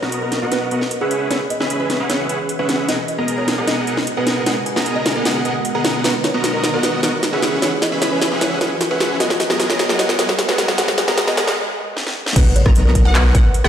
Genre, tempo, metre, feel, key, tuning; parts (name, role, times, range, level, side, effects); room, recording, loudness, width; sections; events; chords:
future bass; 152 BPM; 4/4; half-time; G# minor; A4 = 441 Hz
buzzing kalimba; melody; 0.0-13.7 s; G#4 to A#5; -24 LUFS; right 1 dB; sidechain pumping, ping-pong delay
ethereal airy pad; sustained chords; 0.8-12.3 s; E3 to D#5; -30 LUFS; right 1 dB; ensemble chorus, built-in reverb, tremolo, sidechain pumping
dense compressed supersaw; riff; 0.0-13.7 s; B3 to B5; -21 LUFS; equal; sidechain pumping, low-pass filter
trap drum kit; drums; 0.0-13.7 s; crash cymbal, handclaps, hi-hat, rim click, snare drum; -20 LUFS; equal; overdrive
riser and impact; sound effects; 2.0-13.7 s; -26 LUFS; equal
wide unison pluck; arpeggios; 12.4-13.7 s; F#5 to A#5; -26 LUFS; equal; sidechain pumping
saturated sub bass; bass; 12.4-13.7 s; E1 to B1; -15 LUFS; equal; sidechain pumping
electronic kick drum; drums; 12.4-13.4 s; -14 LUFS; equal
moderate lush hall reverb, RT60 2.0 s, digital ambience; played on a big sound system in a bare room, large studio reverb, high-pass filter; -15 LUFS; side -9 dB against mid
0.0-12.4 A section; 12.4-13.7 B section
build-up 0.0-12.4; drum fill 0.0-11.6, 12.0-12.4; filter sweep on supersaw synth 0.0-12.4; riser 2.0-11.6; break 11.6-12.4; drop 12.4-13.7; impact 12.4-13.7
0.0 Bmaj7; 1.1 E69; 2.9 G#m9; 6.0 Bmaj7; 7.4 E69; 9.2 G#m9; 12.4 Bmaj7